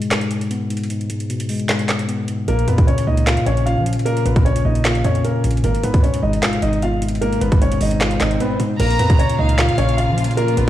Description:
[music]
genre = hip hop, trap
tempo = 152 BPM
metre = 4/4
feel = half-time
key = Bb phrygian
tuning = A4 = 440 Hz
[part]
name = mellow tine electric piano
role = accompaniment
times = 0.0-10.7 s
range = Ab2 to Db4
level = -20 LUFS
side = left 1 dB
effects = low-pass filter
[part]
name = trap drum kit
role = drums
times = 0.0-10.7 s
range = crash cymbal, handclaps, hi-hat, kick drum, snare drum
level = -20 LUFS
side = equal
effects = none
[part]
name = dark concert grand piano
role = melody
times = 2.5-10.7 s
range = Bb3 to F5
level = -22 LUFS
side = equal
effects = low-pass filter, tape echo
[part]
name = hard-hitting 808-style bass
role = bass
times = 2.5-10.7 s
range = Ab1 to F3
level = -20 LUFS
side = right 1 dB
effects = none
[part]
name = swell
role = sound effects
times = 7.4-8.8 s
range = none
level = -30 LUFS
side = right 2 dB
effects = none
[part]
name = dark chamber violin section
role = second line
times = 8.8-10.3 s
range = F5 to Bb5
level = -24 LUFS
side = right 1 dB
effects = tape echo
[part]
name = muted symphonic string section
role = sustained chords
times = 8.8-10.7 s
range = Db3 to F4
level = -28 LUFS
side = right 2 dB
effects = none
[sound]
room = light reverb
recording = played on a big sound system in a bare room, large studio reverb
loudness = -15 LUFS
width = side -13 dB against mid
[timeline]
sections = 0.0-8.8 A section; 8.8-10.7 B section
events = break 0.0-2.5; swell 7.4-8.8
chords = 0.0 Abm; 2.5 Bbm; 5.6 Abm; 8.8 Bbm

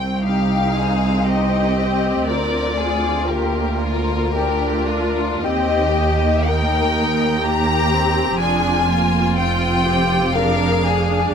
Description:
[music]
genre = classical, slow romantic movement for string orchestra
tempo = 53-63 BPM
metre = 3/4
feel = rubato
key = unclear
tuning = A4 = 440 Hz
[part]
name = rich chamber violin section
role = melody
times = 0.0-11.3 s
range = Bb4 to Bb5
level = -22 LUFS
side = left 4 dB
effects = none
[part]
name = warm chamber viola section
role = accompaniment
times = 0.0-11.3 s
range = Bb3 to Ab4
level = -23 LUFS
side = right 3 dB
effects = none
[part]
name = rich chamber double bass section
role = bass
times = 0.0-11.3 s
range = F1 to Eb2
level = -23 LUFS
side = right 2 dB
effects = none
[part]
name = rich studio cello section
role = bass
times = 0.0-11.3 s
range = C2 to F2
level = -23 LUFS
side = right 3 dB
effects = none
[part]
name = clear chamber violin section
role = second line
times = 0.2-11.3 s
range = F4 to Bb4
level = -23 LUFS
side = left 6 dB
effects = none
[sound]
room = light reverb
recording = close, detailed microphones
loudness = -16 LUFS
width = side -7 dB against mid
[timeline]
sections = 0.0-11.3 A section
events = none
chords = 0.0 Cm; 2.3 Bb/D; 5.4 Eb; 8.4 Ddim/F

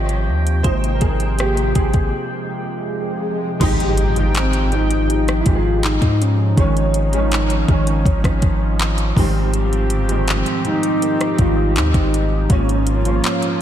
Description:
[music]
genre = contemporary R&B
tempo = 81 BPM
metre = 4/4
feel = straight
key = Ab major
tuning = A4 = 440 Hz
[part]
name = clear grand piano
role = accompaniment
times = 0.0-13.6 s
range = Ab2 to Eb5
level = -23 LUFS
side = right 1 dB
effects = ensemble chorus
[part]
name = chorused pulse-width pad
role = sustained chords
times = 0.0-13.6 s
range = C3 to G5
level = -25 LUFS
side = right 1 dB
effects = none
[part]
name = long sustained 808-style bass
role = bass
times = 0.0-13.2 s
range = G1 to Ab2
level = -19 LUFS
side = equal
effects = none
[part]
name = smooth R&B drum kit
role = drums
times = 0.1-13.6 s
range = crash cymbal, handclaps, hi-hat, kick drum, rim click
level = -20 LUFS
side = equal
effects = none
[part]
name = swell and impact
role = sound effects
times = 2.3-6.6 s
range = none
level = -27 LUFS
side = equal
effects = none
[part]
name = mellow horn-like synth lead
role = melody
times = 4.4-13.6 s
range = C4 to F4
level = -22 LUFS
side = left 1 dB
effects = chorus, analog delay
[part]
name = celesta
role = texture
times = 4.4-13.6 s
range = G4 to Db5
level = -35 LUFS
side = right 1 dB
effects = none
[sound]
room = moderate lush hall reverb, RT60 2.8 s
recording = dreamy mix soaked in reverb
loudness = -15 LUFS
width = side -10 dB against mid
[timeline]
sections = 0.0-3.6 A section; 3.6-13.6 B section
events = grand piano solo 0.0-3.6; swell 2.3-3.6; break 2.1-3.6; impact 3.6-6.6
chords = 0.0 Abmaj7; 0.6 Abmaj9; 3.6 Fm7/Ab; 6.6 Eb9sus4/Ab; 9.2 Abmaj7; 12.5 Bbm9/Ab

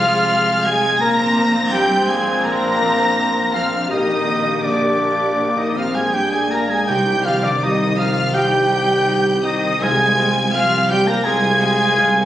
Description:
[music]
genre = cinematic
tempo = 83 BPM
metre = 4/4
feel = rubato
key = C minor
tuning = A4 = 439 Hz
[part]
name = warm studio violin section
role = melody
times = 0.0-12.3 s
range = D6 to Bb6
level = -24 LUFS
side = left 2 dB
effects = none
[part]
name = concert flute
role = second line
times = 0.0-12.3 s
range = D5 to Bb5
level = -24 LUFS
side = equal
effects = none
[part]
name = mellow clarinet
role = second line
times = 0.0-12.3 s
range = D4 to Bb4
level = -24 LUFS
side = equal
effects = none
[part]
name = rich studio violin section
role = second line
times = 0.0-12.3 s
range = D5 to Bb5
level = -26 LUFS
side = equal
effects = none
[part]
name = warm oboe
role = second line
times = 0.0-12.3 s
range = D5 to Bb5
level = -21 LUFS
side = equal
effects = none
[part]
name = rich studio viola section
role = accompaniment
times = 0.0-12.0 s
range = Ab3 to Ab4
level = -26 LUFS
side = left 1 dB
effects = none
[part]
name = mellow French horn section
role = sustained chords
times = 0.0-12.3 s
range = Bb3 to Ab4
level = -26 LUFS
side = left 1 dB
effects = none
[part]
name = concert harp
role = arpeggios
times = 0.0-12.3 s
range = Bb2 to Bb4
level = -29 LUFS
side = left 3 dB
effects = none
[part]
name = warm studio cello section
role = bass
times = 0.0-12.3 s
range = D3 to Bb3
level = -25 LUFS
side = right 1 dB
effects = none
[part]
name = warm studio double bass section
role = bass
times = 0.0-12.3 s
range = Bb1 to C2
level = -26 LUFS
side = right 2 dB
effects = none
[sound]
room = moderate scoring stage reverb, RT60 1.7 s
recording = recorded on a phone in the room, studio reverb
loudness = -15 LUFS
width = side -12 dB against mid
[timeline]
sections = 0.0-12.3 A section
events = none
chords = 0.0 Fm/C; 1.0 Bbadd9; 3.9 Gm/Bb; 6.9 Cm; 9.8 Fmadd9/C

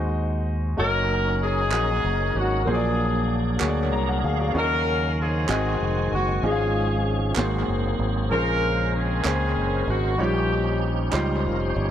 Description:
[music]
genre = slow gospel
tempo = 64 BPM (dotted quarters)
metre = 6/8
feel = straight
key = unclear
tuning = A4 = 441 Hz
[part]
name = warm horn section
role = melody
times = 0.0-11.1 s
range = C4 to C5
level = -26 LUFS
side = left 1 dB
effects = analog delay
[part]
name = clear concert grand piano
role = accompaniment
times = 0.0-11.9 s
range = Ab2 to Bb5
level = -27 LUFS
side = equal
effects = analog delay
[part]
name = fingered electric bass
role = bass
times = 0.0-11.9 s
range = F1 to Eb2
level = -25 LUFS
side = equal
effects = none
[part]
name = tonewheel organ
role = sustained chords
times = 0.8-11.9 s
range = Db3 to Bb5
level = -30 LUFS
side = right 2 dB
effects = fast rotary speaker, chorus vibrato
[part]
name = group handclap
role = percussion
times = 1.7-11.4 s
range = none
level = -33 LUFS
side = right 7 dB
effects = analog delay
[sound]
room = light reverb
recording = echo-heavy mix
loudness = -21 LUFS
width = side -10 dB against mid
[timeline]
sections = 0.8-11.9 A section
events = tonewheel organ fill 3.6-4.6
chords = 0.0 Ab7; 0.8 Gb6; 2.7 Bb7b13; 4.6 Ebm9; 5.5 Ab7; 6.4 Db/Ab; 7.4 Ab9; 8.3 Bbm9; 10.2 Eb9/Bb

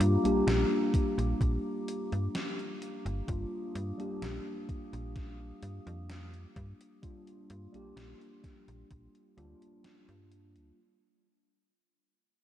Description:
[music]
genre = vaporwave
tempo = 64 BPM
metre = 4/4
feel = straight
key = Eb major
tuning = A4 = 438 Hz
[part]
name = mellow tine electric piano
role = accompaniment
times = 0.0-10.8 s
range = G3 to G4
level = -33 LUFS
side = equal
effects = analog chorus, analog delay
[part]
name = warbly tape-like pad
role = sustained chords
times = 0.0-10.7 s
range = G4 to Eb6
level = -42 LUFS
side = left 4 dB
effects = chorus, built-in reverb
[part]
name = slap-like FM bass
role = bass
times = 0.0-10.7 s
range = G1 to G2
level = -33 LUFS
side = equal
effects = none
[part]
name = gated 80s digital drum machine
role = drums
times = 0.0-10.7 s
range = hi-hat, snare drum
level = -40 LUFS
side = equal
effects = gated reverb, gated reverb snare, overdrive
[part]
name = electronic kick drum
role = drums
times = 0.9-9.1 s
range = none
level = -33 LUFS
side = equal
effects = overdrive
[sound]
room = moderate lush hall reverb, RT60 2.9 s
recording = dreamy mix soaked in reverb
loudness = -30 LUFS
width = side -12 dB against mid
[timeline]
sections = 0.0-10.8 A section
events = fade-out 0.0-10.8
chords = 0.0 Gm7; 3.3 Ebmaj9/G

